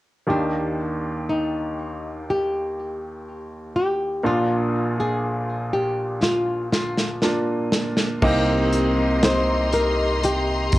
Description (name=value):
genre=pop ballad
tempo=60 BPM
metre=4/4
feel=straight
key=unclear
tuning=A4 = 443 Hz
part: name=flamenco guitar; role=melody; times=0.3-10.8 s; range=D4 to C5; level=-25 LUFS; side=left 1 dB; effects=cassette tape, plate reverb
part: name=bright upright piano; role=accompaniment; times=0.3-10.8 s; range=Bb1 to G4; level=-24 LUFS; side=equal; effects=plate reverb
part: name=modern studio drum kit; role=drums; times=6.2-10.8 s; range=crash cymbal, hi-hat, kick drum, snare drum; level=-23 LUFS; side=equal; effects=cassette tape
part: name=warm studio string section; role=sustained chords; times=8.2-10.8 s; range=G4 to C6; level=-27 LUFS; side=left 2 dB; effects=plate reverb
part: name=fingerpicked steel-string acoustic guitar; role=arpeggios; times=8.2-10.8 s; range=C3 to G4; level=-32 LUFS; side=left 2 dB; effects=none
part: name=fingered electric bass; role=bass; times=8.2-10.8 s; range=G1 to C2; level=-24 LUFS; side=equal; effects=none
room=moderate studio ambience, RT60 0.5 s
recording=home recording on cassette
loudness=-20 LUFS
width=side -16 dB against mid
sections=0.3-8.2 A section; 8.2-10.8 B section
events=drum fill 6.2-8.2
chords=0.3 Eb; 4.2 Bb; 8.2 Cm7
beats=| 0.28 1.28 2.27 3.26 | 4.24 5.22 6.21 7.21 | 8.22 9.22 10.23